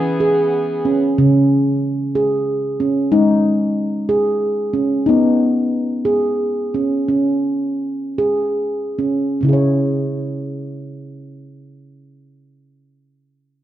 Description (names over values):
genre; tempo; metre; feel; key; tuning
world meditative, meditative tuned percussion; 46-62 BPM (dotted quarters); 6/8; straight; C# minor; A4 = 437 Hz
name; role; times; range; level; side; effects
muted French horn section; sustained chords; 0.0-1.2 s; E3 to G#4; -24 LUFS; left 2 dB; none
handpan; arpeggios; 0.0-13.1 s; C#3 to C#5; -16 LUFS; equal; none
room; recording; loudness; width
wet scoring stage reverb, RT60 1.8 s; worn, warbling old tape, cassette tape, warbly pitch drift; -15 LUFS; side -12 dB against mid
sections
0.0-9.4 A section; 9.4-13.6 B section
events
slowing down 5.1-9.4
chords
0.0 E; 1.2 C#5; 3.1 G#5; 5.1 B; 7.1 C#5; 9.4 C#m